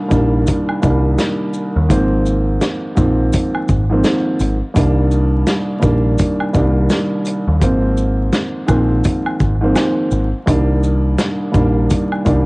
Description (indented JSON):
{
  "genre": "hip hop, boom-bap hip-hop",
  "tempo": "84 BPM",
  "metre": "4/4",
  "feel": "swing 61% on 16ths",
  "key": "C minor",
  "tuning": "A4 = 440 Hz",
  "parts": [
    { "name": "dark concert grand piano", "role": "accompaniment", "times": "0.0-12.5 s", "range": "C2 to D4", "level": "-16 LUFS", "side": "equal", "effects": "cassette tape, high-pass filter, low-pass filter" },
    { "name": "deep dub picked electric bass", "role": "bass", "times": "0.1-12.5 s", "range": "Ab1 to Eb2", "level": "-16 LUFS", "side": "equal", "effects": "none" },
    { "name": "warm soul drum kit", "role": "drums", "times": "0.1-12.5 s", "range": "hi-hat, kick drum, snare drum", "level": "-19 LUFS", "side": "equal", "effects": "cassette tape" },
    { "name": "maracas and woodblock", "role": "percussion", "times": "0.1-12.5 s", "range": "none", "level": "-28 LUFS", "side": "equal", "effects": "none" }
  ],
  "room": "light reverb, small room reverb",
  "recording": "home recording on cassette, vinyl crackle, nothing above 10.3 kHz",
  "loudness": "-13 LUFS",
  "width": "side -25 dB against mid",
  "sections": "0.0-12.5 A section",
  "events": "none",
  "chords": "0.0 Cm7; 1.9 Ab69; 4.8 Cm7; 7.6 Ab69; 10.5 Cm7"
}